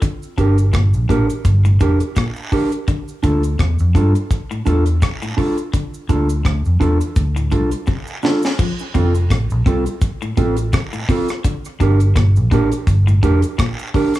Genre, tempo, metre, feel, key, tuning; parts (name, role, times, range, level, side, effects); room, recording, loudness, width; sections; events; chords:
roots reggae; 84 BPM; 4/4; swing 56% on 16ths; F major; A4 = 440 Hz
electric guitar at the edge of break-up; arpeggios; 0.0-14.1 s; A2 to F3; -25 LUFS; left 3 dB; harmonic tremolo
deep reggae drum kit; drums; 0.0-14.2 s; crash cymbal, hi-hat, kick drum, rim click, snare drum; -18 LUFS; equal
cabasa and guiro; percussion; 0.0-14.2 s; -36 LUFS; right 3 dB
mellow electric guitar; accompaniment; 0.4-14.1 s; C4 to Bb4; -21 LUFS; right 2 dB; tape echo, plate reverb
vintage muted fingered electric bass; bass; 0.4-13.4 s; F1 to G2; -15 LUFS; equal
light reverb; small room ambience; -14 LUFS; side -15 dB against mid
0.0-8.6 A section; 8.6-14.2 B section
drum fill 7.9-8.6
0.0 Gm; 2.9 Dm; 8.6 F; 11.4 Gm